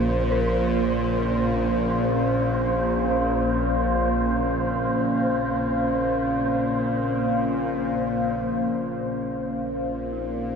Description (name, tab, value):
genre	dark ambient drone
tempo	free time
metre	none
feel	none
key	unclear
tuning	A4 = 440 Hz
part	deep dark ambient pad	sustained chords	0.0-10.6 s	Bb3 to F5	-25 LUFS	left 1 dB	chorus, built-in reverb
part	bowed-like drone	drone	0.0-10.6 s	Bb1 to Bb2	-25 LUFS	equal	built-in reverb, phaser
part	wind-like tuned noise texture	texture	0.0-8.5 s	C5	-30 LUFS	right 4 dB	built-in reverb
part	dark detuned synth bell	arpeggios	0.3-10.6 s	Eb4 to Bb4	-36 LUFS	equal	none
room	wet huge ambient reverb, RT60 8.2 s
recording	dark, warm production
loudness	-21 LUFS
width	side -6 dB against mid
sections	0.0-8.5 A section; 8.5-10.6 B section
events	none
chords	0.0 Bbmadd9